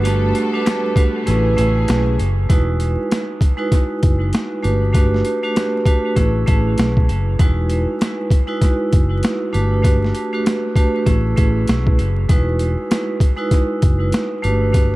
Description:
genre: hip hop, boom-bap hip-hop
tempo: 98 BPM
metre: 4/4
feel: swing 61% on 16ths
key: E major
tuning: A4 = 440 Hz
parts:
  - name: vibraphone with hard mallets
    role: accompaniment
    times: 0.0-15.0 s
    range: G#3 to B4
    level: -20 LUFS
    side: right 1 dB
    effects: dub echo
  - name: rich studio string section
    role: sustained chords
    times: 0.0-2.5 s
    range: C#3 to A4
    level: -28 LUFS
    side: left 3 dB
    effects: none
  - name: vintage muted fingered electric bass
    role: bass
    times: 0.0-15.0 s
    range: E1 to B1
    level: -18 LUFS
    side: equal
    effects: none
  - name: boom bap sampler-style drum kit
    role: drums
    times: 0.1-14.9 s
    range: hi-hat, kick drum, snare drum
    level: -17 LUFS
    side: equal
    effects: overdrive
  - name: finger snaps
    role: percussion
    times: 0.7-2.1 s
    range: none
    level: -41 LUFS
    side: left 2 dB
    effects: none
room: studio ambience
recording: echo-heavy mix, vinyl crackle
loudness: -15 LUFS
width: side -19 dB against mid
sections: 0.0-2.5 A section; 2.5-15.0 B section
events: kick muted 1.3-2.5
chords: 0.0 Gmaj9; 1.3 Amaj9; 2.5 Emaj9; 4.6 Gmaj9; 6.2 Amaj9; 7.4 Emaj9; 9.5 Gmaj9; 11.1 Amaj9; 12.3 Emaj9; 14.4 Gmaj9

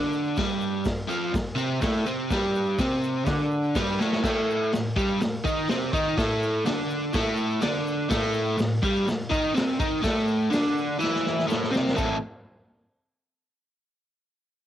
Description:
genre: garage rock duo or trio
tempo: 124 BPM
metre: 4/4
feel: straight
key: A minor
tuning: A4 = 440 Hz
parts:
  - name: overdriven electric guitar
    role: riff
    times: 0.0-12.2 s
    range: F2 to A4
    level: -24 LUFS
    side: equal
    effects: cassette tape
  - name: tube shaker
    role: percussion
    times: 0.0-12.2 s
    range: none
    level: -55 LUFS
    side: left 8 dB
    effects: none
  - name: vintage drum kit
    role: drums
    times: 0.4-12.1 s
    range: crash cymbal, hi-hat, kick drum, snare drum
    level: -29 LUFS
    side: equal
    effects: cassette tape
room: small room ambience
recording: home recording on cassette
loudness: -23 LUFS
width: side -11 dB against mid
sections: 0.0-4.2 A section; 4.2-12.0 B section; 12.0-13.9 C section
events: drum fill 4.0, 11.0-12.0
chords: 0.4 G5; 4.2 Am

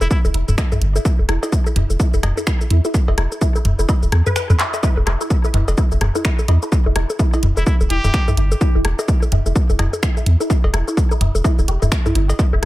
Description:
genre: minimal techno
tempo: 127 BPM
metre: 4/4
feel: swing 60% on 16ths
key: E minor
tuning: A4 = 440 Hz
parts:
  - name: trumpet with straight mute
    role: melody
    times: 0.0-0.2, 7.6-8.4 s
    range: E4 to G4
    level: -27 LUFS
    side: equal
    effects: analog delay
  - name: resonant blip pluck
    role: riff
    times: 0.0-12.7 s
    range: E4 to E5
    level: -26 LUFS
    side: equal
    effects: phaser, ensemble chorus, sidechain pumping, tape echo
  - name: punchy sub bass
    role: bass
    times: 0.0-12.7 s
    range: D1 to E2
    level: -17 LUFS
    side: equal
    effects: tube saturation, sidechain pumping
  - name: house drum kit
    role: drums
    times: 0.0-12.7 s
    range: finger snaps, handclaps, hi-hat, shaker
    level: -26 LUFS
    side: equal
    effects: overdrive, analog delay
  - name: booming analog drum machine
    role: percussion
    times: 0.0-12.7 s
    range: bongos, cowbell, rim click, toms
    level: -22 LUFS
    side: left 1 dB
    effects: tape echo
  - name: electronic kick drum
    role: drums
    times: 0.1-12.5 s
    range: none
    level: -16 LUFS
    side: equal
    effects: overdrive
room: little or no reverb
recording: echo-heavy mix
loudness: -15 LUFS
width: side -17 dB against mid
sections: 0.0-12.7 A section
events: kick drops out 4.4-4.8; drum fill 4.6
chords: none

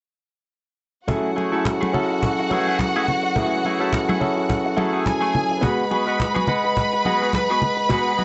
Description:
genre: disco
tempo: 106 BPM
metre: 4/4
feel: swing 56% on 16ths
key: F# dorian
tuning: A4 = 439 Hz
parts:
  - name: warm studio violin section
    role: second line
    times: 1.1-8.2 s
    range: F#4 to B5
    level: -25 LUFS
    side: equal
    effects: none
  - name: barky tine electric piano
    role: accompaniment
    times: 1.1-8.2 s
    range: F#3 to F#5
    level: -26 LUFS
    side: equal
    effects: overdrive
  - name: electric guitar at the edge of break-up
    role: accompaniment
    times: 1.1-8.2 s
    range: A3 to B4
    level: -29 LUFS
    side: equal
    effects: wah
  - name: cajon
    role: drums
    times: 1.1-8.1 s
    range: none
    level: -28 LUFS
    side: equal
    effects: none
  - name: congas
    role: percussion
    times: 1.1-8.2 s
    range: none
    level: -30 LUFS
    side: equal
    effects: none
room: moderate large studio reverb, RT60 0.9 s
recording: nothing above 8.0 kHz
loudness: -21 LUFS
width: mono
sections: 1.1-8.2 A section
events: none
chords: 1.1 F#m9; 5.6 G#m7

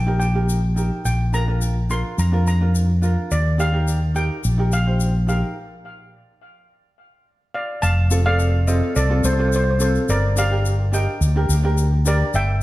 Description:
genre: calypso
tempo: 106 BPM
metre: 4/4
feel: straight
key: unclear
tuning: A4 = 441 Hz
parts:
  - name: steel pan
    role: melody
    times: 0.0-12.6 s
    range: A4 to C6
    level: -25 LUFS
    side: equal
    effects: tape echo
  - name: mellow fretless electric bass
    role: bass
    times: 0.0-12.6 s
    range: F1 to F2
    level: -18 LUFS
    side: equal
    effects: none
  - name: ukulele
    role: accompaniment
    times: 0.1-12.3 s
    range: C4 to C5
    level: -27 LUFS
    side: right 1 dB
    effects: none
  - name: egg shaker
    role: percussion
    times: 0.2-12.5 s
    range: none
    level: -33 LUFS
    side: left 6 dB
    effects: none
room: moderate recital hall reverb, RT60 1.6 s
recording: dark, warm production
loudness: -17 LUFS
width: side -17 dB against mid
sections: 0.0-7.8 A section; 7.8-12.6 B section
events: stop 5.6-7.8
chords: 0.0 Eb; 1.1 Bb; 3.3 Eb; 5.6 N.C.; 7.8 F; 10.1 Gm

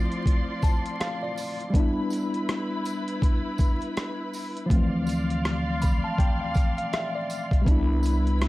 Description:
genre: lo-fi hip hop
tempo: 81 BPM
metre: 4/4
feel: swing 60% on 16ths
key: D dorian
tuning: A4 = 441 Hz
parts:
  - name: mellow tine electric piano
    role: accompaniment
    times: 0.0-8.5 s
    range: E3 to B5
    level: -28 LUFS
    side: left 1 dB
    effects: medium stereo tremolo, low-pass filter
  - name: rich studio string section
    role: sustained chords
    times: 0.0-8.5 s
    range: F3 to C6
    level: -34 LUFS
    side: equal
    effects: low-pass filter
  - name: boom bap sampler-style drum kit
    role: drums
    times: 0.1-8.5 s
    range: hi-hat, kick drum, rim click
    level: -24 LUFS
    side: equal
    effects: vintage 12-bit sampler grit
  - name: tambourine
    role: percussion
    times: 0.6-8.2 s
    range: none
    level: -46 LUFS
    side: right 4 dB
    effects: none
  - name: upright bass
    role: bass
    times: 4.7-8.5 s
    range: B1 to D2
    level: -27 LUFS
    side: equal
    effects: none
room: light reverb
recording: vinyl crackle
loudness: -23 LUFS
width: side -18 dB against mid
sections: 0.0-8.5 A section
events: break 0.0-4.7; tine electric piano fill 0.3-1.7, 5.4-7.7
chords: 0.0 Dm7; 1.7 G6; 4.7 Dm7; 7.7 Cmaj7

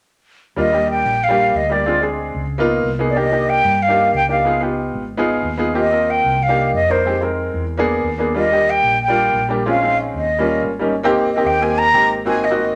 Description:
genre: jazz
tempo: 185 BPM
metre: 4/4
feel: straight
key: Eb major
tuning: A4 = 441 Hz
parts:
  - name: breathy concert flute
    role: melody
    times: 0.6-12.8 s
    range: C5 to Bb5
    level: -18 LUFS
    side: equal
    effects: none
  - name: clear upright piano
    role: accompaniment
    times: 0.6-12.7 s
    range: G3 to Bb4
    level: -21 LUFS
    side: equal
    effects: none
  - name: woody fretless electric bass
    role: bass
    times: 0.6-12.7 s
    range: Ab1 to G2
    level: -28 LUFS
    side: equal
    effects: none
room: wet studio reverb, RT60 0.7 s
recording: none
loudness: -17 LUFS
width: mono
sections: 0.6-11.0 A section; 11.0-12.8 B section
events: none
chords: 0.6 Ebmaj7; 1.9 Dm7b5; 2.5 Db13; 3.2 Cm7; 4.5 Db9; 5.8 Eb69; 6.4 Cm9; 7.1 Fm7; 7.7 E7#11; 8.4 Ebmaj7; 9.7 Bbm7; 10.3 Eb7; 11.0 Abmaj7

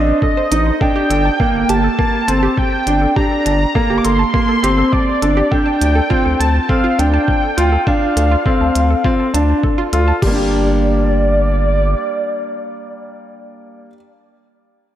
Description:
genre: piano and strings electronica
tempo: 102 BPM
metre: 4/4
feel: straight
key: G minor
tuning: A4 = 440 Hz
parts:
  - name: warm velvety synth lead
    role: melody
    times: 0.0-13.3 s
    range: D5 to D6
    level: -19 LUFS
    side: equal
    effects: chorus, diffuse ambient delay
  - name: analog pluck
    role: arpeggios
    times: 0.0-10.5 s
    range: F4 to A5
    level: -24 LUFS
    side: right 2 dB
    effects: chorus, sidechain pumping, diffuse ambient delay
  - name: clear grand piano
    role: riff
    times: 0.0-14.0 s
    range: G3 to G4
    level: -17 LUFS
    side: equal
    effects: diffuse ambient delay
  - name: round analog bass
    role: bass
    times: 0.0-11.9 s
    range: G1 to D2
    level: -16 LUFS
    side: equal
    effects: sidechain pumping
  - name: electronic kick drum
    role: drums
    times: 0.2-10.3 s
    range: none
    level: -18 LUFS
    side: equal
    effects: studio ambience
  - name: minimal click drum kit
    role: drums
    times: 0.5-10.3 s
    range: crash cymbal, hi-hat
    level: -26 LUFS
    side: right 1 dB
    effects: overdrive, studio ambience
room: wet lush hall reverb, RT60 2.5 s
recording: dreamy mix soaked in reverb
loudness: -12 LUFS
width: side -11 dB against mid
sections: 0.0-10.2 A section; 10.2-12.6 B section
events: drop 0.0-10.2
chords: 0.0 Adim; 0.8 Gmadd9; 5.5 Dm7; 10.2 Gm

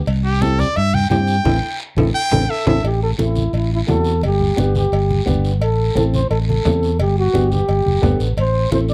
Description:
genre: latin, cumbia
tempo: 173 BPM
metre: 4/4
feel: straight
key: A dorian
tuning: A4 = 443 Hz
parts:
  - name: fingered electric bass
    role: bass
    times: 0.1-8.9 s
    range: F#1 to G2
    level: -20 LUFS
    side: equal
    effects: none
  - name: congas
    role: percussion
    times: 0.1-8.9 s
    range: none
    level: -25 LUFS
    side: equal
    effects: none
  - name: cowbell and timbales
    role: percussion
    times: 0.1-8.6 s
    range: none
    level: -30 LUFS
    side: equal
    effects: none
  - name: guiro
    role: percussion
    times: 0.1-8.9 s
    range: none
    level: -37 LUFS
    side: equal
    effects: none
  - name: brilliant trumpet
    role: melody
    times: 0.2-2.8 s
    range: G4 to G5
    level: -23 LUFS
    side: equal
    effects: none
  - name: flamenco guitar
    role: accompaniment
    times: 0.4-8.9 s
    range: B3 to A4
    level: -24 LUFS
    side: equal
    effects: none
  - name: breathy trombone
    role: second line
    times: 2.5-8.9 s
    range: E4 to D5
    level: -23 LUFS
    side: equal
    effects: none
room: light reverb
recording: dark, warm production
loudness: -17 LUFS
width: mono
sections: 0.0-2.8 A section; 2.8-8.9 B section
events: trumpet solo 0.0-2.8; band accent 1.5-2.8; drum fill 2.3-2.8; trombone solo 2.8-8.9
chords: 0.1 C; 1.5 Am; 4.2 G; 5.6 Am; 7.0 G; 8.4 Am

